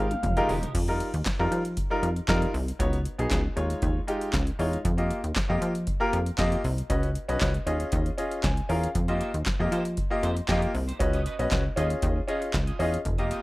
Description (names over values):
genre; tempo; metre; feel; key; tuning
early-eighties boogie funk; 117 BPM; 4/4; straight; F minor; A4 = 440 Hz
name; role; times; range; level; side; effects
expressive portamento lead; melody; 0.0-0.5 s; F5; -34 LUFS; left 1 dB; chorus, slapback echo
clear baby grand piano; accompaniment; 0.0-13.4 s; G3 to Ab5; -29 LUFS; left 1 dB; none
dark studio string section; sustained chords; 0.0-0.7 s; none; barely audible; none; none
plucky analog bass; bass; 0.0-13.3 s; E1 to F3; -27 LUFS; equal; none
clean electric guitar; riff; 0.1-0.7, 8.9-13.4 s; Ab3 to Eb5; -40 LUFS; right 2 dB; ensemble chorus
electro analog drum machine; drums; 0.1-13.4 s; crash cymbal, handclaps, hi-hat, kick drum, snare drum, toms; -30 LUFS; equal; none
room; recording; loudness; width
little or no reverb; rough home demo mix; -24 LUFS; side -20 dB against mid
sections
0.7-13.4 A section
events
drum fill 0.0-0.7; grand piano fill 8.2-8.9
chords
0.0 Fm11; 0.7 F9sus4; 2.8 Db9sus4; 3.6 Eb9sus4; 4.8 F9sus4; 6.9 Db9sus4; 7.7 Eb9sus4; 8.9 F9sus4; 11.0 Db9sus4; 11.8 Eb9sus4